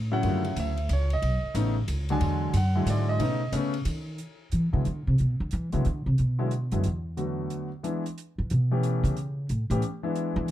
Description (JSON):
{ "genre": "jazz piano trio", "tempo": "182 BPM", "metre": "3/4", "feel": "swing 64% on 8ths", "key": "E mixolydian", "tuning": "A4 = 444 Hz", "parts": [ { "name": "upright bass", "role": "bass", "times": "0.0-10.5 s", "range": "A1 to E3", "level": "-26 LUFS", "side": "equal", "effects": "none" }, { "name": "clear grand piano", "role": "melody", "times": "0.1-10.5 s", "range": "C#3 to G#5", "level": "-29 LUFS", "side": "left 1 dB", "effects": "none" }, { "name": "compact cocktail drum kit", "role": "drums", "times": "0.2-10.5 s", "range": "hi-hat, ride cymbal", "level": "-44 LUFS", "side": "equal", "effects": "none" } ], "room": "light reverb", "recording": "dark, warm production", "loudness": "-25 LUFS", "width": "side -13 dB against mid", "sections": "0.0-4.2 A section; 4.2-10.5 A section", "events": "grand piano solo 0.0-4.2; upright bass solo 4.2-10.5", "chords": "0.2 F#m7; 1.2 B9; 2.2 E9; 3.2 B9; 4.2 E7(no3); 7.2 Bm7; 7.8 E7; 8.2 A9", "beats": "| 0.23 0.56 0.89 | 1.22 1.55 1.88 | 2.21 2.54 2.88 | 3.21 3.54 3.87 | 4.20 4.53 4.86 | 5.19 5.52 5.85 | 6.18 6.51 6.84 | 7.17 7.50 7.83 | 8.16 8.49 8.82 | 9.16 9.49 9.82 | 10.15 10.48" }